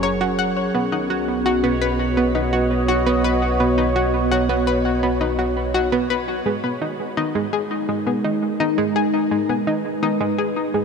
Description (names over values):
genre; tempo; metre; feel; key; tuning
ambient, sequencer-driven space music; 84 BPM; 4/4; straight; G# minor from 6.5 s; A4 = 441 Hz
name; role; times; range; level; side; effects
sweeping resonant pad; sustained chords; 0.0-10.8 s; Gb3 to D#5; -22 LUFS; equal; chorus
analog pluck; riff; 0.0-10.8 s; G#3 to Gb5; -21 LUFS; equal; chorus, tape echo
round analog bass; bass; 0.0-6.4 s; Gb1 to B1; -26 LUFS; equal; tube saturation
bubbling stepped-filter texture; texture; 0.0-6.5 s; Db5; -35 LUFS; right 3 dB; chorus, built-in reverb
room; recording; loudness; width
wet huge ambient reverb, RT60 7.7 s; dreamy mix soaked in reverb, cassette tape; -18 LUFS; side -5 dB against mid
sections
0.0-6.5 A section; 6.5-10.8 B section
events
none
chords
0.0 Gb; 0.7 B; 6.5 G#m7